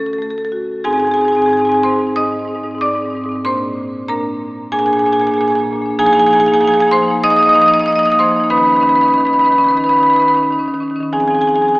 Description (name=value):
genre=classical, contemporary piece for solo marimba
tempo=94 BPM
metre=4/4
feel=rubato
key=unclear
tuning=A4 = 441 Hz
part: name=marimba with medium hard mallets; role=solo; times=0.0-11.8 s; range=Ab2 to Eb6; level=-12 LUFS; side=equal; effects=none
room=wet cathedral reverb, RT60 3.8 s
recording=recorded in a church or concert hall, AM radio sound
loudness=-12 LUFS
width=side -24 dB against mid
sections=0.9-11.8 A section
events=none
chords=0.0 Dmaj7 (rootless); 0.9 Ab; 3.4 Bb9; 6.0 Fm7; 8.5 Badd9/D#; 11.1 Fm7